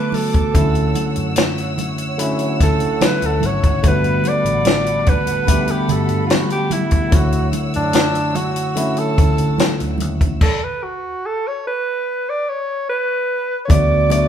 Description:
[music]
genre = lush 1970s-style soul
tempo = 73 BPM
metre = 4/4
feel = straight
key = D major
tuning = A4 = 440 Hz
[part]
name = breathy alto saxophone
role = melody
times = 0.0-14.3 s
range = D4 to D5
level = -20 LUFS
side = right 2 dB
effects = none
[part]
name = barky tine electric piano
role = accompaniment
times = 0.0-14.3 s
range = D3 to C#5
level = -21 LUFS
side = left 1 dB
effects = overdrive
[part]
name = dark studio string section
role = sustained chords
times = 0.0-14.3 s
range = A4 to E6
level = -28 LUFS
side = right 1 dB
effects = none
[part]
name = clean electric guitar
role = riff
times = 0.0-0.5 s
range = A3 to F#4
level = -26 LUFS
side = right 5 dB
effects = none
[part]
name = compact cocktail drum kit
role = drums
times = 0.1-14.3 s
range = crash cymbal, hi-hat, kick drum, snare drum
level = -17 LUFS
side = left 1 dB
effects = none
[part]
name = congas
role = percussion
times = 0.1-14.3 s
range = none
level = -27 LUFS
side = right 3 dB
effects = none
[part]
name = vintage muted fingered electric bass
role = bass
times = 0.6-14.2 s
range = G1 to D3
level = -23 LUFS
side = left 1 dB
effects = none
[sound]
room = moderate large studio reverb, RT60 1.1 s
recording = band playing live in one room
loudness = -15 LUFS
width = side -9 dB against mid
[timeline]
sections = 0.0-13.7 A section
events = alto saxophone solo 0.0-13.7; stop 10.4-13.7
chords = 0.0 Bm7/D; 0.6 Dmaj9; 3.8 Gmaj9; 7.1 Dmaj9; 10.4 N.C.; 13.7 D6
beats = | 0.55 1.38 2.20 3.02 | 3.84 4.67 5.49 6.31 | 7.13 7.95 8.77 9.59 | 10.41 11.24 12.06 12.88 | 13.70

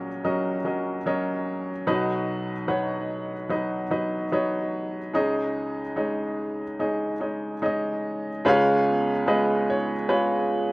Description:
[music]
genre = folk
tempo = 73 BPM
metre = 4/4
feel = straight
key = unclear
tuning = A4 = 441 Hz
[part]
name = bright upright piano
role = melody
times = 0.0-10.7 s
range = A#1 to F#5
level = -23 LUFS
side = equal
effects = slapback echo
[part]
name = vibraphone with medium mallets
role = arpeggios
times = 8.5-10.7 s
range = G#3 to G#4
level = -29 LUFS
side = right 5 dB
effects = slapback echo
[sound]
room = little or no reverb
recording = recorded outdoors, with no room sound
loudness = -23 LUFS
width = side -22 dB against mid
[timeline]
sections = 0.0-8.5 A section; 8.5-10.7 B section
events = none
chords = 0.0 D#m7/A#; 1.9 B; 5.2 C#sus2; 8.5 C#7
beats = 0.24 1.06 | 1.87 2.69 3.51 4.33 | 5.16 5.98 6.81 7.63 | 8.46 9.28 10.10

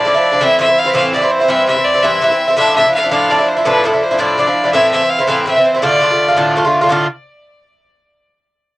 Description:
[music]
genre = celtic folk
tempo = 111 BPM (dotted quarters)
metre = 6/8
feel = straight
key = D minor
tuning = A4 = 439 Hz
[part]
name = rich fiddle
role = melody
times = 0.0-6.5 s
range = A4 to F5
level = -14 LUFS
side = equal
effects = cassette tape, tape echo
[part]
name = Irish bouzouki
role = accompaniment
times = 0.0-7.1 s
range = G2 to F4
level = -13 LUFS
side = right 1 dB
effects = cassette tape
[sound]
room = wet booth ambience, RT60 0.2 s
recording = home recording on cassette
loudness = -10 LUFS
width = side -18 dB against mid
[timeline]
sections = 0.0-6.9 A section; 6.9-8.0 B section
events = none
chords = 0.4 Am; 1.5 C; 2.6 Dmadd9; 4.7 Am; 5.8 Dm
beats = | 0.41 0.95 | 1.49 2.03 | 2.57 3.11 | 3.66 4.20 | 4.74 5.28 | 5.82 6.37 | 6.91

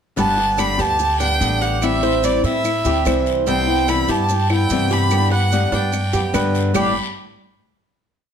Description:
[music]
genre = latin, Cuban son and guajira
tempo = 146 BPM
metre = 4/4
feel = straight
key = G major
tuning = A4 = 438 Hz
[part]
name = rich violin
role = melody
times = 0.2-6.9 s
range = D5 to B5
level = -21 LUFS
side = right 1 dB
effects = plate reverb
[part]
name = flamenco guitar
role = accompaniment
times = 0.2-6.9 s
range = G2 to G4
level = -22 LUFS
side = left 5 dB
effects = none
[part]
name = Cuban tres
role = arpeggios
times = 0.2-6.9 s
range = G3 to C5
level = -23 LUFS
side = right 6 dB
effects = none
[part]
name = upright bass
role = bass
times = 0.2-6.9 s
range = G1 to A2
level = -21 LUFS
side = equal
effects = none
[part]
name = guiro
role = percussion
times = 0.2-6.8 s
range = none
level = -33 LUFS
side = left 5 dB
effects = none
[part]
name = maracas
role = percussion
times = 0.2-6.8 s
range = none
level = -34 LUFS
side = right 10 dB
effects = none
[part]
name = claves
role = percussion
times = 0.6-6.8 s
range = none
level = -32 LUFS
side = right 2 dB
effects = none
[sound]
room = moderate studio reverb, RT60 0.9 s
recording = none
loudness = -16 LUFS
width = side -8 dB against mid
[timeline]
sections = 0.2-6.8 montuno (vamp); 6.8-8.3 final chord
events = none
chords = 0.2 Gadd9; 1.8 Am7; 3.5 Cmaj7; 5.1 G; 6.8 G5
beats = | 0.17 0.59 1.00 1.41 | 1.82 2.24 2.65 3.06 | 3.47 3.88 4.29 4.70 | 5.11 5.52 5.93 6.34 | 6.75

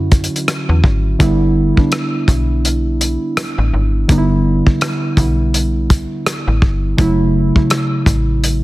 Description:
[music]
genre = contemporary R&B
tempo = 83 BPM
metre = 4/4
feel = swing 58% on 16ths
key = E dorian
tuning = A4 = 436 Hz
[part]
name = muted felt-like synth keys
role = accompaniment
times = 0.0-8.6 s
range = C#3 to F#4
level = -17 LUFS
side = right 1 dB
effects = chorus
[part]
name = slap-like FM bass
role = bass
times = 0.0-8.6 s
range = F#1 to F#2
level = -17 LUFS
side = equal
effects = none
[part]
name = warm soul drum kit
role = drums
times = 0.1-8.6 s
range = hi-hat, kick drum, rim click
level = -14 LUFS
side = equal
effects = soft clipping on snare
[sound]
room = light reverb, small room reverb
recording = dense, heavily limited modern master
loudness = -12 LUFS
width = side -18 dB against mid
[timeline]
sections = 0.0-8.6 A section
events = none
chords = 0.0 Dmaj9; 1.2 G6; 4.1 Em7/G; 7.0 F#m7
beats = 0.48 | 1.20 1.92 2.65 3.37 | 4.09 4.82 5.54 6.26 | 6.98 7.71 8.43

